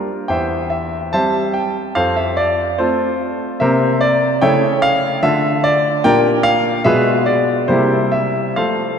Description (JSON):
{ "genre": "classical-period piano sonatina", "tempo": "73 BPM", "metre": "2/4", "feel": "rubato", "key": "unclear", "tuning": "A4 = 441 Hz", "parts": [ { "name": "clear concert grand piano", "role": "solo", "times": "0.0-9.0 s", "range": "E2 to A5", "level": "-14 LUFS", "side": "equal", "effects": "none" } ], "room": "wet church reverb, RT60 3.3 s", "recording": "none", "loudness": "-14 LUFS", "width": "side -7 dB against mid", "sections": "0.0-9.0 A section", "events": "none", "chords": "0.3 C/E; 2.0 F; 3.6 C7; 4.4 A7/C#; 5.2 Dm; 6.0 Gm/Bb; 6.8 Bdim7; 7.7 C7", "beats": "| 0.30 1.12 | 1.96 2.78 | 3.60 4.40 | 5.22 6.02 | 6.84 7.68 | 8.55" }